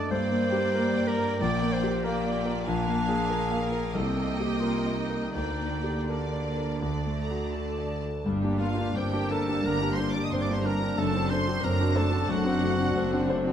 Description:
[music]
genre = classical, romantic movement for piano and orchestra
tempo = 79-97 BPM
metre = 4/4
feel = rubato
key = G minor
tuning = A4 = 440 Hz
[part]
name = rich symphonic violin section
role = melody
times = 0.0-13.3 s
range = D5 to Eb6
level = -39 LUFS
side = left 2 dB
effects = none
[part]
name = warm concert grand piano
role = melody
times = 0.0-13.5 s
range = Bb1 to F5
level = -29 LUFS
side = left 2 dB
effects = none
[part]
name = clear studio violin section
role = second line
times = 0.0-13.3 s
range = D5 to Eb6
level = -38 LUFS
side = equal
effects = none
[part]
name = warm clarinet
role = second line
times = 0.0-13.3 s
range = Bb3 to Eb5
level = -34 LUFS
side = right 1 dB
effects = none
[part]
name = rich studio viola section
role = accompaniment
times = 0.0-13.5 s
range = G3 to G4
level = -33 LUFS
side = right 2 dB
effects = none
[part]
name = rich studio cello section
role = bass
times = 0.0-13.5 s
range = F#2 to D3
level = -34 LUFS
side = right 2 dB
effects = none
[part]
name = mellow French horn section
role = sustained chords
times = 8.2-13.5 s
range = Bb3 to D4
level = -34 LUFS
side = left 3 dB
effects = none
[part]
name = rich studio double bass section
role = bass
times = 8.2-13.5 s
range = F#1 to G1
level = -33 LUFS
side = right 3 dB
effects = none
[part]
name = warm cor anglais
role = second line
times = 8.6-13.3 s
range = F4 to Eb5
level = -36 LUFS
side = right 4 dB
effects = none
[sound]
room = moderate scoring stage reverb, RT60 1.7 s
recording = close, detailed microphones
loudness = -25 LUFS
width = side -9 dB against mid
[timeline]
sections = 0.0-8.3 A section; 8.3-13.5 B section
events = none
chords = 0.1 Gm; 1.4 Gm/Bb; 3.9 Cm7; 5.3 Gm/D; 6.8 D; 8.3 Gm; 11.0 D7/F#

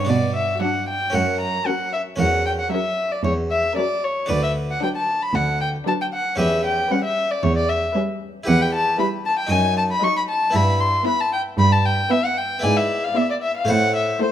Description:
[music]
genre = classical, baroque-style concerto movement with solo episodes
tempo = 115 BPM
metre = 4/4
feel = straight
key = B minor, E minor from 8.5 s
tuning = A4 = 439 Hz
[part]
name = dark violin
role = melody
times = 0.0-14.3 s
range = C5 to C#6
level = -21 LUFS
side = left 2 dB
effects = none
[part]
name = harpsichord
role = accompaniment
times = 0.0-14.3 s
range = D2 to E5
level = -26 LUFS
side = equal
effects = none
[part]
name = rich chamber cello section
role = bass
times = 0.0-14.1 s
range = D2 to B2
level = -22 LUFS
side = right 2 dB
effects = none
[part]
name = warm studio violin section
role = melody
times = 0.6-14.3 s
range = F#4 to D#5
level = -32 LUFS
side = left 5 dB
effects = none
[part]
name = warm chamber violin section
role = second line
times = 0.6-14.3 s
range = C#4 to E4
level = -30 LUFS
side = left 4 dB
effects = none
[part]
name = warm chamber viola section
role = accompaniment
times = 0.6-14.3 s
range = F#3 to B3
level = -27 LUFS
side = right 3 dB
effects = none
[sound]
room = moderate recital hall reverb, RT60 1.4 s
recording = close, detailed microphones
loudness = -18 LUFS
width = side -10 dB against mid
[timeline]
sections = 0.1-14.3 A section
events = none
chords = 0.1 Bm; 1.1 F#; 2.2 F#7/E; 4.3 Bm/D; 6.4 C#m7b5/E; 8.5 Em; 9.5 F#m69; 10.6 Em/G; 12.6 E7/G#; 13.7 Am

